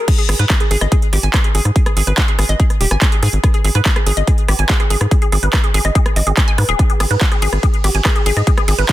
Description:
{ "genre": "psychedelic trance", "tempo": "143 BPM", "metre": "4/4", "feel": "straight", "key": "G# harmonic minor", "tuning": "A4 = 440 Hz", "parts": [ { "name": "woody wave-folded pluck", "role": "riff", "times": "0.0-8.8 s", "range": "G4 to G#5", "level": "-21 LUFS", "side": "equal", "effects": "chorus, auto-pan, sidechain pumping, ping-pong delay" }, { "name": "big-room dance drum kit", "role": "drums", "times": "0.1-8.9 s", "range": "crash cymbal, handclaps, hi-hat, ride cymbal, rim click", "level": "-20 LUFS", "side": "right 1 dB", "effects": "none" }, { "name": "electronic kick drum", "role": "drums", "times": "0.1-8.9 s", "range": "none", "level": "-14 LUFS", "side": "equal", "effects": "none" }, { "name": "tight sequencer bass", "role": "bass", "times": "0.3-8.8 s", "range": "D#1 to G#2", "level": "-16 LUFS", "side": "equal", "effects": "none" } ], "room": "digital ambience", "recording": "dense, heavily limited modern master", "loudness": "-12 LUFS", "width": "side -15 dB against mid", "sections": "0.1-8.9 A section", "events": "drop 0.1-8.9", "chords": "0.1 G#5", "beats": "| 0.08 0.50 0.92 1.34 | 1.76 2.18 2.60 3.02 | 3.44 3.85 4.28 4.69 | 5.11 5.53 5.95 6.37 | 6.79 7.21 7.63 8.05 | 8.47 8.89" }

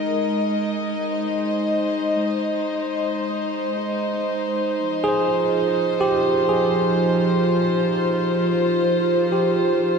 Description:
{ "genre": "ambient", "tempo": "70 BPM", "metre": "3/4", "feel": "straight", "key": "Ab major", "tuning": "A4 = 439 Hz", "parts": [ { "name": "warm chamber string section", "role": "sustained chords", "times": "0.0-10.0 s", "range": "F3 to Eb5", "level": "-20 LUFS", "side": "equal", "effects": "none" }, { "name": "bell-like tine electric piano", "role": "arpeggios", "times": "5.0-10.0 s", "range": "G4 to C5", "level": "-22 LUFS", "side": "right 2 dB", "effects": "tape echo" } ], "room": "wet lush hall reverb, RT60 2.7 s", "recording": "dark, warm production", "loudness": "-19 LUFS", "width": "side -5 dB against mid", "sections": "0.0-10.0 A section", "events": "none", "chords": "0.0 Absus2; 4.9 Fm", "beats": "0.57 1.42 | 2.28 3.14 3.99 | 4.85 5.71 6.57 | 7.42 8.28 9.14" }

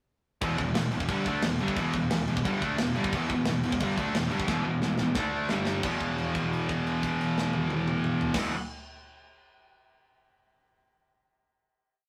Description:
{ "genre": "heavy metal", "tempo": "177 BPM", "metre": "4/4", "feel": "straight", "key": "E minor", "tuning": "A4 = 436 Hz", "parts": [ { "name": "high-gain distorted guitar", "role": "riff", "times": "0.4-8.5 s", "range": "E2 to D4", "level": "-36 LUFS", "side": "equal", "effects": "distortion" }, { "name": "scooped high-gain guitar", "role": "riff", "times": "0.4-8.5 s", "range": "E2 to D4", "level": "-31 LUFS", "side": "equal", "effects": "distortion" }, { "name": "fuzz picked electric bass", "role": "bass", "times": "0.4-8.5 s", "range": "E1 to D2", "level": "-39 LUFS", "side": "equal", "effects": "overdrive" }, { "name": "tight metal drum kit", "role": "drums", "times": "0.4-8.4 s", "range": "crash cymbal, kick drum, snare drum, toms", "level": "-35 LUFS", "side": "equal", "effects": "none" } ], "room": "moderate studio reverb, RT60 0.5 s", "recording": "rough rehearsal-room recording, warm saturation", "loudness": "-28 LUFS", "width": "mono", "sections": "0.4-5.8 riff; 5.8-8.5 final chord", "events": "drum fill 4.5-5.8; held note 5.8-8.3", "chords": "0.4 Em; 5.2 D5; 5.5 G5; 5.8 E5", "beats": "| 0.42 0.76 1.09 1.43 | 1.77 2.11 2.45 2.79 | 3.12 3.46 3.80 4.14 | 4.48 4.82 5.16 5.50 | 5.83 6.17 6.51 6.85 | 7.19 7.53 7.87 8.21" }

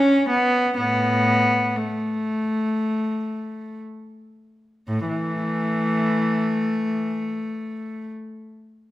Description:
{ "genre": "classical, baroque-style suite movement for unaccompanied cello", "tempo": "free time", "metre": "none", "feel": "none", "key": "A major", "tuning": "A4 = 440 Hz", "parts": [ { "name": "rich cello", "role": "solo", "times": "0.0-8.1 s", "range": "A2 to C#4", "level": "-21 LUFS", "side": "equal", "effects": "none" } ], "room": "moderate recital hall reverb, RT60 1.4 s", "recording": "none", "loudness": "-20 LUFS", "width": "side -15 dB against mid", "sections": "0.0-4.9 A section; 4.9-8.9 B section", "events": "slowing down 0.0-4.9", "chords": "none", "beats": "free time" }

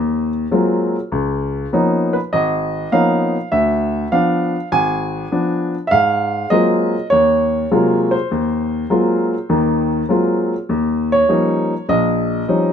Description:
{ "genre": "solo jazz", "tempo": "100 BPM", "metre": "4/4", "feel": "swing 69% on 8ths", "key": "Ab mixolydian", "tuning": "A4 = 440 Hz", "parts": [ { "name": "warm baby grand piano", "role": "solo", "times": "0.0-12.7 s", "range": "Ab1 to Ab5", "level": "-15 LUFS", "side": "equal", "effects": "none" } ], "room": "moderate studio reverb, RT60 0.7 s", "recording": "minimal, uncompressed stereo recording", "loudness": "-15 LUFS", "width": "side -8 dB against mid", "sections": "0.0-12.7 A section", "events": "none", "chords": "0.0 Ab13; 1.1 Db13; 3.5 Ddim7; 5.9 Ab13; 10.7 Eb9", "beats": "0.52 | 1.12 1.72 2.31 2.91 | 3.51 4.11 4.71 5.30 | 5.90 6.50 7.10 7.70 | 8.29 8.89 9.49 10.09 | 10.69 11.29 11.88 12.48" }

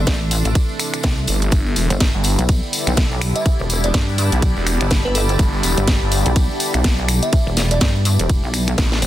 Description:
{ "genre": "bass house", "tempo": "124 BPM", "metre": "4/4", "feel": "swing 58% on 16ths", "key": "unclear", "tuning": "A4 = 440 Hz", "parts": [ { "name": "glassy synth bell", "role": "melody", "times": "0.0-0.2, 3.4-7.9 s", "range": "A4 to E5", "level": "-27 LUFS", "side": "right 2 dB", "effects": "chorus, tape echo" }, { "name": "sweeping resonant pad", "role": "sustained chords", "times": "0.0-9.1 s", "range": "C3 to E4", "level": "-28 LUFS", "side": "right 1 dB", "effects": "chorus, sidechain pumping" }, { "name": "pulsing pluck wobble bass", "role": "bass", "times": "0.0-9.1 s", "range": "E1 to G2", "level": "-19 LUFS", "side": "equal", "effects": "chorus, tube saturation, sidechain pumping" }, { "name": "granular cloud pad", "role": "texture", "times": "0.0-9.1 s", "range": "G4 to C6", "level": "-28 LUFS", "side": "left 1 dB", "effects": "built-in reverb, sidechain pumping" }, { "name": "electronic kick drum", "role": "drums", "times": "0.1-8.9 s", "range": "none", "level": "-18 LUFS", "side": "equal", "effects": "none" }, { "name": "garage drum kit", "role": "drums", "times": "0.1-9.1 s", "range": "finger snaps, hi-hat, ride cymbal, snare drum", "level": "-23 LUFS", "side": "equal", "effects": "none" }, { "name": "tambourine", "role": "percussion", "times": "0.1-9.1 s", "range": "none", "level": "-29 LUFS", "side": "left 4 dB", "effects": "none" }, { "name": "phased detuned saw bass", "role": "bass", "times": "1.3-9.0 s", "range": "E1 to A1", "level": "-19 LUFS", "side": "equal", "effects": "phaser, overdrive, sidechain pumping" } ], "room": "little or no reverb", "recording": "dense, heavily limited modern master", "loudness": "-15 LUFS", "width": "side -13 dB against mid", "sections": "0.0-9.1 A section", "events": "drum fill 8.9", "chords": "0.0 Am; 1.5 G6", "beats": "0.07 0.55 1.04 | 1.52 2.00 2.49 2.97 | 3.46 3.94 4.42 4.91 | 5.39 5.88 6.36 6.84 | 7.33 7.81 8.29 8.78" }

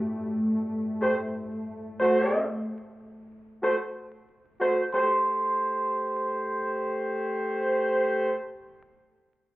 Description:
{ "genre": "hip hop", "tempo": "92 BPM", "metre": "4/4", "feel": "swing 56% on 16ths", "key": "A dorian", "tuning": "A4 = 439 Hz", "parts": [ { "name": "lush unison pad", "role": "sustained chords", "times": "0.0-2.3 s", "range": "A3", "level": "-30 LUFS", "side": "equal", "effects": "chorus, phaser, high-pass filter, low-pass filter" }, { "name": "warm horn section", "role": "stabs", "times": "1.0-8.3 s", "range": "A3 to C5", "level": "-25 LUFS", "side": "equal", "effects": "high-pass filter, low-pass filter, slapback echo" }, { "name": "vibraphone with medium mallets", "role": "melody", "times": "4.9-6.8 s", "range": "C6", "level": "-26 LUFS", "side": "right 2 dB", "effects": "high-pass filter, low-pass filter, slapback echo" } ], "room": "moderate plate reverb, RT60 2.0 s, small room ambience", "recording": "heard muffled through a wall, club reverb, vinyl crackle, EQ", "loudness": "-25 LUFS", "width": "side -17 dB against mid", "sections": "0.0-4.9 A section; 4.9-7.5 B section", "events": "none", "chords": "0.0 Am6; 4.9 Am7", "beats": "0.36 1.01 1.67 | 2.32 2.97 3.62 4.27 | 4.93 5.58 6.23 6.88" }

